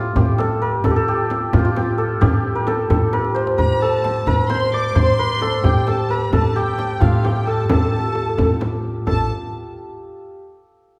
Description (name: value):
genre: Persian modal ensemble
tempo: 88 BPM (dotted quarters)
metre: 6/8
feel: straight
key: A dastgah shur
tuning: A4 = 440 Hz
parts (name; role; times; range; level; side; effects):
- santur; melody; 0.0-10.4 s; F4 to D5; -23 LUFS; equal; none
- upright bass; bass; 0.0-9.3 s; A1 to A2; -24 LUFS; equal; none
- frame drum; percussion; 0.2-9.3 s; none; -28 LUFS; equal; none
- tombak; percussion; 0.2-9.3 s; none; -26 LUFS; equal; none
- dark studio violin section; second line; 3.6-9.3 s; F5 to D6; -30 LUFS; equal; none
room: wet recital hall reverb, RT60 1.6 s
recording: recorded in a church or concert hall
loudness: -19 LUFS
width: mono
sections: 0.0-9.1 A section; 9.1-10.4 B section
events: drum fill 3.1-3.6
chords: none